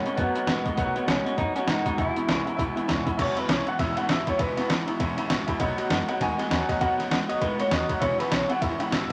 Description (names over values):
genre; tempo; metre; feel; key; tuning
rockabilly; 199 BPM; 4/4; swing 60% on 8ths; E major; A4 = 442 Hz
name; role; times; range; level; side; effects
electric guitar through a small old amp; melody; 0.0-9.1 s; B3 to G#5; -31 LUFS; equal; vibrato effect
picked steel-string acoustic guitar; accompaniment; 0.0-9.1 s; E2 to F#4; -34 LUFS; equal; none
tack piano; accompaniment; 0.0-9.1 s; D#5 to C#6; -37 LUFS; equal; none
electric guitar through a small old amp; riff; 0.0-9.1 s; E2 to G#3; -33 LUFS; equal; none
upright bass; bass; 0.0-9.1 s; E1 to A2; -40 LUFS; equal; none
lo-fi sampler-style drum kit; drums; 0.1-9.0 s; crash cymbal, hi-hat, kick drum, ride cymbal, snare drum; -30 LUFS; equal; overdrive
room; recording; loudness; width
moderate studio reverb, RT60 0.6 s; none; -26 LUFS; mono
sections
0.0-3.2 A section; 3.2-9.1 B section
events
honky-tonk piano fill 2.6-3.2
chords
0.0 B7; 2.0 E; 5.6 B7; 8.0 E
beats
0.17 0.48 | 0.78 1.08 1.38 1.68 | 1.98 2.28 2.59 2.89 | 3.19 3.49 3.79 4.09 | 4.39 4.70 5.00 5.30 | 5.60 5.90 6.20 6.50 | 6.81 7.11 7.41 7.71 | 8.01 8.32 8.62 8.92